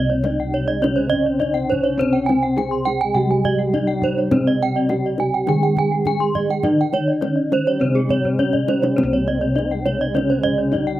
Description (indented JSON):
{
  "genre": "Balinese gamelan",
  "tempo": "103 BPM",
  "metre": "4/4",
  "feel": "straight",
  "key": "C pelog",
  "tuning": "A4 = 441 Hz",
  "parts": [
    { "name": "gamelan-type bronze metallophone", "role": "melody", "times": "0.0-11.0 s", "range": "C4 to Ab4-40c", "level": "-22 LUFS", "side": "right 1 dB", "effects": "none" },
    { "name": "gamelan-type bronze metallophone", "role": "accompaniment", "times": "0.0-11.0 s", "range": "C3 to Ab3-40c", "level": "-28 LUFS", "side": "right 1 dB", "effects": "none" },
    { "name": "gamelan-type bronze metallophone", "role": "arpeggios", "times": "0.0-10.6 s", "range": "Ab4-40c to Ab5-40c", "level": "-22 LUFS", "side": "right 4 dB", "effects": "slapback echo" },
    { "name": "gamelan-type bossed gongs", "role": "bass", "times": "0.0-11.0 s", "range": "C2 to D4+50c", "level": "-24 LUFS", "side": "equal", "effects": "none" },
    { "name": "gamelan-type bronze metallophone", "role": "arpeggios", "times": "0.1-11.0 s", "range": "C5 to C6", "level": "-26 LUFS", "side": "left 5 dB", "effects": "slapback echo" },
    { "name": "kendang", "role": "percussion", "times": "0.1-11.0 s", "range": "none", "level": "-27 LUFS", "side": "left 2 dB", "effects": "none" },
    { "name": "dark French horn", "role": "second line", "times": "0.5-11.0 s", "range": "G3-49c to Db4", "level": "-26 LUFS", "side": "left 3 dB", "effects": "none" }
  ],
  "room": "little or no reverb",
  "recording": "recorded outdoors, with no room sound",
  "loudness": "-17 LUFS",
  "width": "side -14 dB against mid",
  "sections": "0.0-11.0 A section",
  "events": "drum fill 8.3-9.0",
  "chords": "none"
}